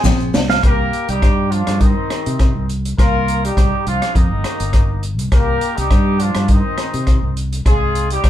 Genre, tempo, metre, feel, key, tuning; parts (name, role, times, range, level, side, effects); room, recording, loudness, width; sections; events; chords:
highlife guitar band; 102 BPM; 4/4; swing 53% on 16ths; C minor; A4 = 441 Hz
mellow horn section; melody; 0.0-8.3 s; Eb3 to C5; -20 LUFS; left 1 dB
semi-hollow electric guitar; accompaniment; 0.0-0.6 s; C4 to D4; -22 LUFS; left 2 dB
clean electric guitar; arpeggios; 0.0-0.6 s; F5; -18 LUFS; right 7 dB
congas; percussion; 0.0-0.5 s; -22 LUFS; right 1 dB
maracas; percussion; 0.0-0.6 s; -31 LUFS; left 4 dB
fingered electric bass; bass; 0.1-8.3 s; G1 to C3; -20 LUFS; equal
vintage drum kit; drums; 0.1-8.3 s; hi-hat, kick drum, rim click, snare drum; -16 LUFS; equal
light reverb; band playing live in one room; -14 LUFS; side -12 dB against mid
0.6-8.3 A section
drum fill 0.0-0.6
0.0 Fm; 0.6 Cm; 3.0 Bbsus4/C; 5.3 Cm; 7.7 Fm7/C